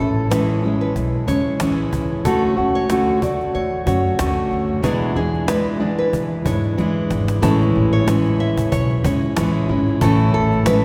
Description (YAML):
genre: acoustic pop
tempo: 93 BPM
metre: 4/4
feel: swing 55% on 16ths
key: A major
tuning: A4 = 440 Hz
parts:
  - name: fingerpicked steel-string acoustic guitar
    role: accompaniment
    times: 0.0-10.8 s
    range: E2 to F#4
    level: -21 LUFS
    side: equal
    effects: none
  - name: nylon-string guitar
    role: arpeggios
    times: 0.0-10.8 s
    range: G#4 to E5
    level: -28 LUFS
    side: equal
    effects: none
  - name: upright bass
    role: bass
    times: 0.0-10.8 s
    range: G#1 to E3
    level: -25 LUFS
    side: equal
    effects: none
  - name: cajon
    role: drums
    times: 0.0-10.8 s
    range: none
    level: -30 LUFS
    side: equal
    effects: none
room: wet cathedral reverb, RT60 5.2 s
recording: recorded in a church or concert hall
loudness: -19 LUFS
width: mono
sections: 0.0-7.4 A section; 7.4-10.8 B section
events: drum fill 6.8-7.4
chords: 0.0 Amaj7; 2.3 Dmaj7; 4.8 E7; 7.4 Amaj7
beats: 0.31 0.96 1.60 | 2.25 2.90 3.55 4.19 | 4.84 5.49 6.13 6.78 | 7.43 8.07 8.72 9.37 | 10.02 10.66